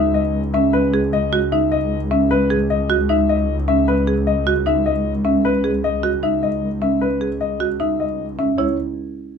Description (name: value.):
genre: classical, minimalist pattern music.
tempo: 153 BPM.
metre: 4/4.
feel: straight.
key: C# minor.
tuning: A4 = 439 Hz.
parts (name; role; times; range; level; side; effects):
warm concert grand piano; melody; 0.0-8.8 s; B4 to E5; -21 LUFS; left 9 dB; none.
marimba with medium mallets; arpeggios; 0.0-8.8 s; C#4 to G#4; -20 LUFS; right 6 dB; none.
warm studio double bass section; bass; 0.0-8.8 s; C#2; -22 LUFS; left 1 dB; none.
room: moderate studio reverb, RT60 0.5 s.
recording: none.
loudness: -16 LUFS.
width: side -6 dB against mid.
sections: 0.0-8.6 A section.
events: none.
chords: 0.0 C#madd9; 8.6 C#m.